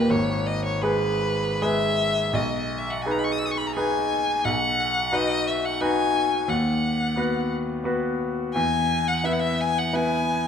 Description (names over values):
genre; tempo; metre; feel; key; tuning
classical, romantic duo for violin and grand piano; 72-89 BPM; 3/4; rubato; G# minor; A4 = 439 Hz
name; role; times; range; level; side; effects
rich violin; melody; 0.0-10.5 s; B4 to E6; -25 LUFS; left 3 dB; none
bright grand piano; accompaniment; 0.0-10.5 s; G#1 to B4; -24 LUFS; equal; none
room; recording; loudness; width
wet recital hall reverb, RT60 1.6 s; none; -22 LUFS; side -7 dB against mid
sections
0.1-10.5 A section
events
none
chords
0.1 G#m; 2.3 G#m/B; 4.4 B; 6.5 B/D#; 8.5 E